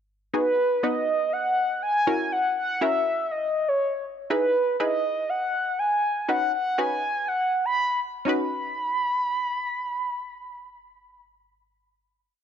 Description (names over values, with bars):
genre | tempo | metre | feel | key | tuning
pop | 121 BPM | 4/4 | straight | B major | A4 = 439 Hz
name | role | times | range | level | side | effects
mellow horn-like synth lead | melody | 0.3-11.2 s | B4 to B5 | -23 LUFS | equal | chorus, digital delay
punchy chord stab | accompaniment | 0.3-11.3 s | B3 to B4 | -27 LUFS | equal | chorus
room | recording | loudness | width
light reverb | high-pass filter, nothing above 8.0 kHz, faint mains hum | -23 LUFS | side -8 dB against mid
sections
0.3-8.3 build; 8.3-12.2 final chord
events
build-up 0.3-8.3; filter sweep 0.3-8.3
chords
0.3 G#m7; 2.1 F#7; 4.3 Emaj7; 6.3 Badd9